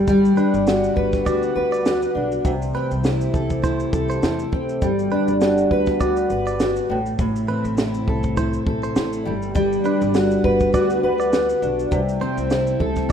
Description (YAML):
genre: acoustic pop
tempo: 101 BPM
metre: 4/4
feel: swing 55% on 16ths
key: G major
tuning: A4 = 440 Hz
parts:
  - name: fingerpicked steel-string acoustic guitar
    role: accompaniment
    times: 0.0-13.1 s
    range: A2 to B4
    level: -19 LUFS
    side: equal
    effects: double-tracked left and right
  - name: airy breathy pad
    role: sustained chords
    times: 0.0-13.1 s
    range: C3 to G4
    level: -34 LUFS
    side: equal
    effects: chorus
  - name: upright bass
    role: bass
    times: 0.0-13.1 s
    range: G1 to E2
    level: -29 LUFS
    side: equal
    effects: none
  - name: compact cocktail drum kit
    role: drums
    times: 0.1-13.1 s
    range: kick drum, shaker, snare drum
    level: -24 LUFS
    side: right 1 dB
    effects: none
  - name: direct-recorded clean electric guitar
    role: arpeggios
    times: 0.4-12.4 s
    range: B4 to D5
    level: -31 LUFS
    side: right 5 dB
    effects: none
room: moderate plate reverb, RT60 1.6 s, small room ambience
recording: rough home demo mix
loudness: -18 LUFS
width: side -8 dB against mid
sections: 0.0-13.1 A section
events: none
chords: 0.0 Gmaj7; 2.5 C6; 4.8 Gmaj7; 6.9 Am; 9.3 Gmaj7; 11.9 C6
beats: | 0.08 0.67 1.26 1.86 | 2.45 3.04 3.64 4.23 | 4.82 5.42 6.01 6.60 | 7.19 7.78 8.38 8.97 | 9.56 10.15 10.74 11.33 | 11.92 12.51 13.10